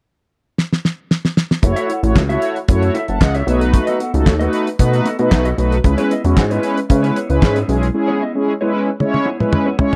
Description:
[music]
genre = early-eighties boogie funk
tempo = 114 BPM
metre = 4/4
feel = straight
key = F# dorian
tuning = A4 = 442 Hz
[part]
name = damped 70s drum kit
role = drums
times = 0.6-10.0 s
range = handclaps, hi-hat, kick drum, snare drum, toms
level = -18 LUFS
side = equal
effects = none
[part]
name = mellow synth brass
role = accompaniment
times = 1.6-10.0 s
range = G#3 to A5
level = -20 LUFS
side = equal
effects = chorus
[part]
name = mellow electric guitar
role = riff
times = 1.6-10.0 s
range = B3 to F#5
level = -28 LUFS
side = equal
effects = subtle chorus
[part]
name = chorused synth bass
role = bass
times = 1.6-7.9 s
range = F#1 to C#3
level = -19 LUFS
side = equal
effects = none
[sound]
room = small room ambience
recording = dry, close 1970s-style studio recording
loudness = -16 LUFS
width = mono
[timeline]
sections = 0.0-1.6 A section; 1.6-10.0 B section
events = drum fill 0.6-1.6, 9.0-10.0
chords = 0.0 N.C.; 1.6 F#m7; 3.5 B7; 5.8 C#m7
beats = 0.05 0.58 1.10 | 1.63 2.16 2.68 3.21 | 3.74 4.26 4.79 5.32 | 5.84 6.37 6.89 7.42 | 7.95 8.47 9.00 9.53

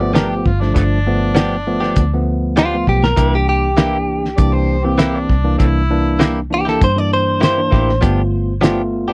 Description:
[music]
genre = straight-eighth soul blues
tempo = 99 BPM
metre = 4/4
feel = straight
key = unclear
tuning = A4 = 440 Hz
[part]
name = direct-recorded clean electric guitar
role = melody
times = 0.0-8.0 s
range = F4 to D5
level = -21 LUFS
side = equal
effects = none
[part]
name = overdriven harmonica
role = second line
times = 0.0-6.3 s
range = A3 to D5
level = -26 LUFS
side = equal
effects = none
[part]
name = tine electric piano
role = accompaniment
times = 0.0-9.1 s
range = E3 to F4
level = -22 LUFS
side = equal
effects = none
[part]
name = vintage muted fingered electric bass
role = bass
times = 0.0-9.1 s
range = G1 to G2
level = -21 LUFS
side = equal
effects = none
[part]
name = direct-recorded clean electric guitar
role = stabs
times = 0.1-9.1 s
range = E3 to G4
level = -22 LUFS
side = equal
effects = subtle chorus
[part]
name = cloth-damped thuddy drum kit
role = drums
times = 0.2-8.8 s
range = hi-hat, kick drum, snare drum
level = -18 LUFS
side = equal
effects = none
[sound]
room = light reverb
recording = dry, close 1970s-style studio recording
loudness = -16 LUFS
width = mono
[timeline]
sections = 0.0-9.1 A section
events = drum fill 2.9-3.2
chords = 0.0 G7; 3.2 C7; 8.0 G7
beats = 0.15 | 0.76 1.36 1.97 2.57 | 3.18 3.78 4.39 4.99 | 5.60 6.21 6.81 7.42 | 8.02 8.63

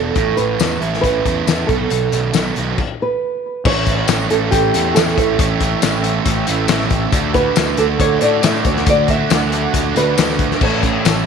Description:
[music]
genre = indie rock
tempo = 138 BPM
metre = 4/4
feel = straight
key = A mixolydian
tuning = A4 = 440 Hz
[part]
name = nylon-string guitar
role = melody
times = 0.0-11.2 s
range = G4 to E5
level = -19 LUFS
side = right 2 dB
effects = tape echo
[part]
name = fuzz guitar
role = riff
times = 0.0-11.3 s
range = A2 to A4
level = -20 LUFS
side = right 10 dB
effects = distortion
[part]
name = fuzz picked electric bass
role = bass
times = 0.0-11.2 s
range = E1 to A2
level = -21 LUFS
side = left 1 dB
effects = overdrive
[part]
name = loose indie drum kit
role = drums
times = 0.2-11.2 s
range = crash cymbal, hi-hat, kick drum, snare drum, tambourine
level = -18 LUFS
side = left 5 dB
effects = none
[part]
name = hollow soft pad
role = sustained chords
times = 3.7-11.3 s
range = A4 to F#6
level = -28 LUFS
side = left 2 dB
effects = chorus
[sound]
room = light reverb, small room reverb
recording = 1960s-style stereo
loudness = -14 LUFS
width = side -6 dB against mid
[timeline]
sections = 0.0-3.7 A section; 3.7-11.3 B section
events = stop 2.8-3.7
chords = 0.2 A; 1.7 B7; 2.8 N.C.; 3.7 A7; 7.1 Dadd9; 10.6 A7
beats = | 0.16 0.60 1.04 1.47 | 1.91 2.35 2.78 3.22 | 3.65 4.09 4.52 4.96 | 5.39 5.83 6.26 6.70 | 7.13 7.57 8.00 8.44 | 8.87 9.31 9.74 10.18 | 10.61 11.04

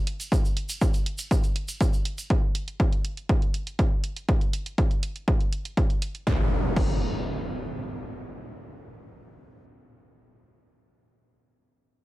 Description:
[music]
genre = melodic techno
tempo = 121 BPM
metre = 4/4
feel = straight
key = none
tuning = none
[part]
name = punchy analog drum machine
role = drums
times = 0.1-6.9 s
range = crash cymbal, hi-hat, snare drum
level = -37 LUFS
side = right 2 dB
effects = none
[part]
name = tube shaker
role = percussion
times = 0.2-2.3 s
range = none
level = -36 LUFS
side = right 2 dB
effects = none
[part]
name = electronic kick drum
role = drums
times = 0.3-6.9 s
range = none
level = -23 LUFS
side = equal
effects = none
[part]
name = impact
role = sound effects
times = 6.3-9.7 s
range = none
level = -30 LUFS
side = equal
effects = none
[sound]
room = digital ambience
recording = none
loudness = -24 LUFS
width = side -17 dB against mid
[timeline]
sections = 0.0-6.3 A section; 6.3-10.2 B section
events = none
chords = none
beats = | 0.32 0.81 1.31 1.81 | 2.30 2.80 3.29 3.79 | 4.29 4.78 5.28 5.77 | 6.27 6.76 7.26 7.76 | 8.25 8.75 9.24

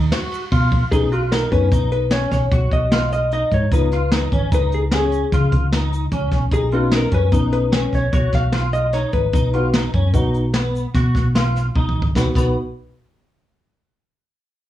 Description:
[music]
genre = progressive instrumental, band music in an uneven meter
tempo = 149 BPM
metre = 7/4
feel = straight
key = B lydian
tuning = A4 = 440 Hz
[part]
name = clean electric guitar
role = arpeggios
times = 0.0-12.5 s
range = B3 to F#4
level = -26 LUFS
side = right 1 dB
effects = ensemble chorus
[part]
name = hollow-body short-scale fingered electric bass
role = bass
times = 0.0-12.5 s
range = G#1 to C#3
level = -20 LUFS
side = equal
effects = none
[part]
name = jazz brush drum kit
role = drums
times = 0.1-12.4 s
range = crash cymbal, hi-hat, kick drum, ride cymbal, snare drum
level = -20 LUFS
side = equal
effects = none
[part]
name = tube shaker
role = percussion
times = 0.1-12.6 s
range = none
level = -47 LUFS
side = left 4 dB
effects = none
[part]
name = vintage hollow-body jazz guitar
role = melody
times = 0.9-11.7 s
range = F#4 to E#5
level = -22 LUFS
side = left 2 dB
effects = none
[part]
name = dark grand piano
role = accompaniment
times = 0.9-12.5 s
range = B3 to F#4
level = -23 LUFS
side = left 2 dB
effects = none
[sound]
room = light reverb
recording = worn, warbling old tape, cassette tape, warbly pitch drift, small room reverb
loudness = -16 LUFS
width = side -13 dB against mid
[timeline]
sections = 0.9-12.2 A section; 12.2-14.7 B section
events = drum fill 11.7-12.2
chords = 0.0 B5; 0.9 Badd9; 3.7 C#7; 6.5 Badd9; 12.2 B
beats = 0.12 0.52 | 0.92 1.32 1.72 2.12 2.52 2.92 3.32 | 3.72 4.12 4.52 4.92 5.32 5.72 6.12 | 6.52 6.92 7.33 7.73 8.13 8.53 8.93 | 9.34 9.74 10.14 10.54 10.95 11.35 11.75 | 12.15 12.55

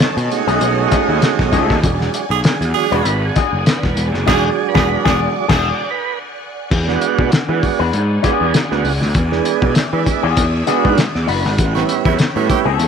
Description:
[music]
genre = funk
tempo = 98 BPM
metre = 4/4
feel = swing 56% on 16ths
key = unclear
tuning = A4 = 436 Hz
[part]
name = phased string machine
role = sustained chords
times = 0.0-12.9 s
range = C#5 to B5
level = -26 LUFS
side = left 1 dB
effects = ensemble chorus, phaser
[part]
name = tonewheel organ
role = stabs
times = 0.0-12.9 s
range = F#3 to E5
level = -19 LUFS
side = right 14 dB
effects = slow rotary speaker
[part]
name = fuzz picked electric bass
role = bass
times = 0.0-12.9 s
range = E1 to E3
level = -19 LUFS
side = left 1 dB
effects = overdrive
[part]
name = cloth-damped thuddy drum kit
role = drums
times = 0.0-12.9 s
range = crash cymbal, hi-hat, kick drum, snare drum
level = -17 LUFS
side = left 1 dB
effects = none
[part]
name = electric guitar with an envelope filter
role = accompaniment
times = 0.5-12.9 s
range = A3 to B4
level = -21 LUFS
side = left 14 dB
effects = spring reverb
[part]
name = raspy tenor saxophone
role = second line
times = 2.3-5.7, 11.7-12.6 s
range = E4 to G#4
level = -23 LUFS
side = right 11 dB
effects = none
[sound]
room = studio ambience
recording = 1960s-style stereo with parts hard left and right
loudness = -13 LUFS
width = side -7 dB against mid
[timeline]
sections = 0.0-6.7 A section; 6.7-12.9 B section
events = tonewheel organ solo 0.0-6.7; band accent 4.3-6.7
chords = 0.0 B13; 1.8 E9; 11.6 A9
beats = 0.00 0.61 1.23 | 1.83 2.45 3.06 3.67 | 4.28 4.89 5.50 6.11 | 6.72 7.33 7.94 8.55 | 9.15 9.76 10.37 10.98 | 11.59 12.19 12.80

